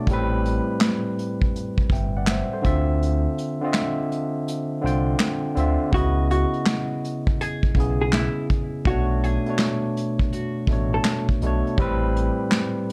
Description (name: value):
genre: lo-fi hip hop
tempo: 82 BPM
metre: 4/4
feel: swing 66% on 16ths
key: unclear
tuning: A4 = 440 Hz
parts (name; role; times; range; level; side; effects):
- barky tine electric piano; accompaniment; 0.0-12.9 s; A2 to G5; -27 LUFS; equal; overdrive, low-pass filter
- smooth gliding synth bass; bass; 0.1-12.3 s; G1 to D2; -26 LUFS; equal; none
- vintage brush drum kit; drums; 0.1-12.9 s; handclaps, hi-hat, kick drum, snare drum; -26 LUFS; equal; none
- vintage hollow-body jazz guitar; melody; 5.9-11.3 s; E4 to A4; -31 LUFS; equal; low-pass filter, analog delay
room: moderate studio reverb, RT60 0.6 s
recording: none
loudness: -23 LUFS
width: mono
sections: 0.0-12.9 A section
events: kick muted 3.0-5.9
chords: 0.1 Am9; 2.6 Dm9; 5.9 C#m9; 8.9 Bm9; 11.8 Am9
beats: | 0.08 0.81 1.54 2.27 | 3.00 3.74 4.47 5.20 | 5.93 6.66 7.39 8.13 | 8.86 9.59 10.32 11.05 | 11.78 12.52